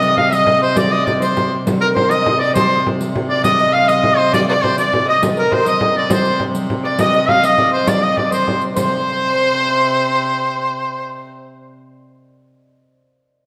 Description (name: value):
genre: medieval dance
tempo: 135 BPM (dotted quarters)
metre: 6/8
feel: straight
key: C minor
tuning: A4 = 440 Hz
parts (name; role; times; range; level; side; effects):
- bright shawm; melody; 0.0-11.3 s; Bb4 to F5; -19 LUFS; equal; none
- concert harp; second line; 0.0-12.0 s; Bb4 to F5; -24 LUFS; equal; none
- warm fiddle; second line; 0.0-11.3 s; Bb4 to F5; -24 LUFS; equal; none
- rich viola da gamba; drone; 0.0-11.3 s; C3; -27 LUFS; equal; none
- riq; percussion; 0.0-8.9 s; none; -26 LUFS; equal; none
- frame drum; percussion; 0.2-8.9 s; none; -25 LUFS; equal; none
room: wet concert hall reverb, RT60 1.9 s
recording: none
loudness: -16 LUFS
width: mono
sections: 0.0-1.7 A section; 1.7-8.8 A section; 8.8-10.5 B section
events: none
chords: none